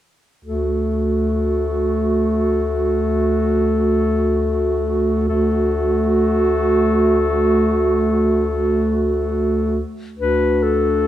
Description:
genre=classical, lyrical piece for single-reed quartet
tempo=free time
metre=none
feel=none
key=D major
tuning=A4 = 438 Hz
part: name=warm clarinet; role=melody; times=0.4-11.1 s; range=A4 to B4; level=-22 LUFS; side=left 8 dB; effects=none
part: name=mellow alto saxophone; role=second line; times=0.4-11.1 s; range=F#4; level=-22 LUFS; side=right 4 dB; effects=none
part: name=warm bass clarinet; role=bass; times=0.4-11.1 s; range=D2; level=-20 LUFS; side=right 2 dB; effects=none
part: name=mellow clarinet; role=accompaniment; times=0.5-11.1 s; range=A3 to D4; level=-23 LUFS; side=right 1 dB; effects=none
room=moderate scoring stage reverb, RT60 1.5 s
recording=dark, warm production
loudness=-16 LUFS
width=side -12 dB against mid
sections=0.4-10.2 A section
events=none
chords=0.4 D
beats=free time

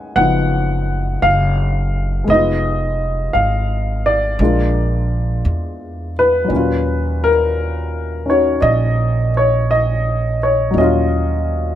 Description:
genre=jazz ballad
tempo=57 BPM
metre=4/4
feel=swing 68% on 8ths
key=Eb minor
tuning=A4 = 441 Hz
part: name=warm baby grand piano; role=accompaniment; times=0.0-11.8 s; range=Bb2 to G#5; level=-16 LUFS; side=left 1 dB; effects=none
part: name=upright bass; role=bass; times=0.2-11.8 s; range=F1 to Fb2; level=-18 LUFS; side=right 1 dB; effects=none
room=little or no reverb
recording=close, detailed microphones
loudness=-14 LUFS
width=side -11 dB against mid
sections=0.0-11.8 A section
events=none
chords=0.0 Bmaj13; 2.3 Fm7b5; 4.4 Bb7; 6.5 Ebm9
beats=0.17 1.23 | 2.29 3.35 4.40 5.45 | 6.51 7.57 8.63 9.69 | 10.76

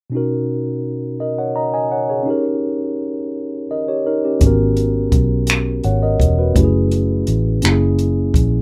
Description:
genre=slow six-eight R&B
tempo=56 BPM (dotted quarters)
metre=6/8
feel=straight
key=B major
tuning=A4 = 440 Hz
part: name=mellow tine electric piano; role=accompaniment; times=0.1-8.6 s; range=B2 to A#5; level=-21 LUFS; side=equal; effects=none
part: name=vintage muted fingered electric bass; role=bass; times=4.4-8.6 s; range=E1 to B1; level=-19 LUFS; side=equal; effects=none
part: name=compact cocktail drum kit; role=drums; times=4.4-8.5 s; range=finger snaps, hi-hat, kick drum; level=-19 LUFS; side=equal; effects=none
room=light reverb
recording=rough home demo mix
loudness=-18 LUFS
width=mono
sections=0.1-8.6 A section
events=none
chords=0.1 Bmaj9; 2.3 D#7; 4.4 G#m11; 6.6 F#m7; 7.6 F#7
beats=| 0.13 1.20 | 2.27 3.34 | 4.41 5.48 | 6.55 7.63

